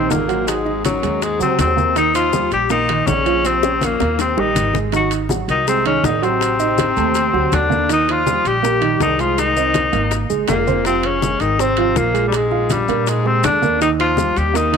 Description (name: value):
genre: Afro-Cuban jazz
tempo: 162 BPM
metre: 4/4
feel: straight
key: Eb mixolydian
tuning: A4 = 441 Hz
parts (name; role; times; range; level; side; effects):
- warm tenor saxophone; melody; 0.0-14.8 s; Gb3 to G4; -18 LUFS; left 3 dB; none
- warm baritone saxophone; second line; 0.0-14.8 s; Gb2 to G3; -24 LUFS; left 13 dB; none
- warm baby grand piano; accompaniment; 0.0-14.8 s; Eb3 to F5; -21 LUFS; right 12 dB; none
- upright bass; bass; 0.0-14.8 s; F1 to Bb2; -24 LUFS; equal; none
- bongos; percussion; 0.1-14.8 s; none; -25 LUFS; left 15 dB; none
- congas; percussion; 0.1-14.8 s; none; -26 LUFS; left 1 dB; none
- maracas; percussion; 0.1-14.7 s; none; -32 LUFS; left 14 dB; none
- timbales; percussion; 0.1-14.8 s; none; -29 LUFS; right 15 dB; none
room: light reverb, small room reverb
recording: 1960s-style stereo with parts hard left and right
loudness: -14 LUFS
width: side -6 dB against mid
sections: 0.0-14.8 A section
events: drum fill 3.4-4.9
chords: 0.5 Ab9; 2.0 Eb9; 3.4 Bbm; 4.2 Eb; 4.9 Ab7; 6.4 Adim7; 7.9 Ebadd9; 9.4 Ab69; 10.9 Fm; 12.3 Bb7; 13.8 Ebadd9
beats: 0.10 | 0.47 0.84 1.22 1.59 | 1.96 2.33 2.70 3.07 | 3.44 3.81 4.19 4.56 | 4.93 5.30 5.67 6.04 | 6.41 6.78 7.15 7.53 | 7.89 8.27 8.64 9.01 | 9.38 9.75 10.12 10.49 | 10.86 11.23 11.60 11.97 | 12.34 12.71 13.07 13.45 | 13.81 14.18 14.55